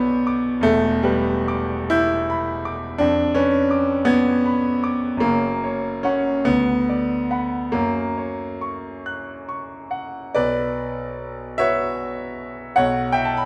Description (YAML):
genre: classical, romantic nocturne for solo piano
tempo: 44-57 BPM (dotted quarters)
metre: 12/8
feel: rubato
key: B minor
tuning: A4 = 440 Hz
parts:
  - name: bright concert grand piano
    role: solo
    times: 0.0-13.5 s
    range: E1 to Ab6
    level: -22 LUFS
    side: equal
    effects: none
room: wet recital hall reverb, RT60 1.6 s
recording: none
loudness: -21 LUFS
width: mono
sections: 0.0-10.3 A section; 10.3-13.5 B section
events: none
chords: 0.0 G/B; 0.6 Em7; 3.0 Fdim7; 5.2 F#; 6.4 Bm/D; 7.7 F#; 10.3 Bm; 12.8 F#m/B